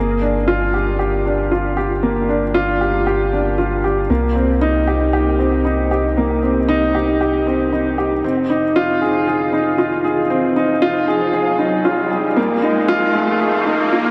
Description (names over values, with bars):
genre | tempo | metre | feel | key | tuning
piano and strings electronica | 116 BPM | 4/4 | straight | C minor | A4 = 440 Hz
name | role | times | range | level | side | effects
warm upright piano | riff | 0.0-14.1 s | Bb3 to Ab4 | -18 LUFS | equal | tape echo
round analog bass | bass | 0.0-14.1 s | F1 to C2 | -26 LUFS | equal | none
riser | sound effects | 9.9-14.1 s | none | -26 LUFS | equal | none
room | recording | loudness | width
wet huge ambient reverb, RT60 7.9 s | dreamy mix soaked in reverb, high-pass filter | -17 LUFS | mono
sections
0.0-14.1 A section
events
build-up 0.0-14.1; filter sweep 0.0-14.1; riser 9.9-14.1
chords
0.0 Gm7; 4.1 Cm7; 8.2 Fm7; 12.4 Bb7sus4